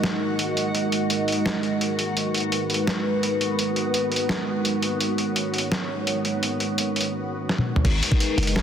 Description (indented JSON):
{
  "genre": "half-time drum and bass",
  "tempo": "169 BPM",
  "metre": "4/4",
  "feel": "half-time",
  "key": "G# minor",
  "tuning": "A4 = 440 Hz",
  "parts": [
    { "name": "dark analog pad", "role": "sustained chords", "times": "0.0-8.6 s", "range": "G#3 to D#5", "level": "-25 LUFS", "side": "right 1 dB", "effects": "chorus, sidechain pumping" },
    { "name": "boom bap sampler-style drum kit", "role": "drums", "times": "0.0-8.6 s", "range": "crash cymbal, hi-hat, snare drum, toms", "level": "-26 LUFS", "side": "equal", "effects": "none" },
    { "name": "backwards swelling texture", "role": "texture", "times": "0.0-8.6 s", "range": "B3 to A#5", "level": "-31 LUFS", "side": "left 2 dB", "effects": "built-in reverb" },
    { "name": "long sustained 808-style bass", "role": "bass", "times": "7.8-8.6 s", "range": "F#1 to G#1", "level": "-23 LUFS", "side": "equal", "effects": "none" },
    { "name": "electronic kick drum", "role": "drums", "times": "7.8-8.2 s", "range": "none", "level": "-22 LUFS", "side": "equal", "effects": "none" }
  ],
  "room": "moderate huge ambient reverb, RT60 4.0 s",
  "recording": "dense, heavily limited modern master",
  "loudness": "-21 LUFS",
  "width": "side -8 dB against mid",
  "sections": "0.0-7.8 A section",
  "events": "drum fill 7.5-7.8",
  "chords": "0.0 G#madd9"
}